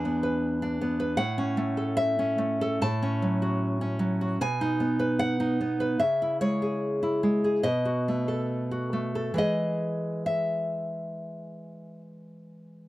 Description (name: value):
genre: romantic piece for solo classical guitar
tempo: 66-78 BPM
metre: 4/4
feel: rubato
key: E major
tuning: A4 = 441 Hz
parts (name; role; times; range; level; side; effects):
- nylon-string guitar; solo; 0.0-12.9 s; E2 to A5; -25 LUFS; equal; none
room: little or no reverb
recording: dry, close 1970s-style studio recording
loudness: -25 LUFS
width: side -16 dB against mid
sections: 0.0-12.9 A section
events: none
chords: 0.0 E7; 1.2 A; 2.8 F#m/A; 4.4 B; 6.0 C#m; 7.6 B7; 9.4 E